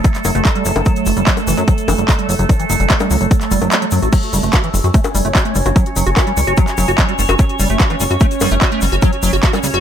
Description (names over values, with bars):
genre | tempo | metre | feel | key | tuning
psychedelic trance | 147 BPM | 4/4 | straight | F# phrygian | A4 = 438 Hz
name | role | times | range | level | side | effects
overtone-sweeping drone | sustained chords | 0.0-9.8 s | A3 to C#5 | -21 LUFS | right 3 dB | chorus, built-in reverb, phaser, sidechain pumping
liquid acid bass | riff | 0.0-9.8 s | E3 to F#4 | -20 LUFS | equal | chorus, auto-pan, sidechain pumping, dub echo
electronic kick drum | drums | 0.0-9.5 s | none | -14 LUFS | equal | overdrive
techno drum kit | drums | 0.0-9.8 s | bongos, crash cymbal, handclaps, hi-hat | -20 LUFS | left 1 dB | overdrive
tube shaker | percussion | 0.0-9.8 s | none | -27 LUFS | left 5 dB | none
plucky analog bass | bass | 0.2-9.8 s | F#1 to F#2 | -17 LUFS | equal | none
room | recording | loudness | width
digital ambience | none | -12 LUFS | side -9 dB against mid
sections
0.0-4.1 A section; 4.1-9.8 B section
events
kick drops out 3.7-4.1; drop 4.1-9.8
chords
0.0 F#5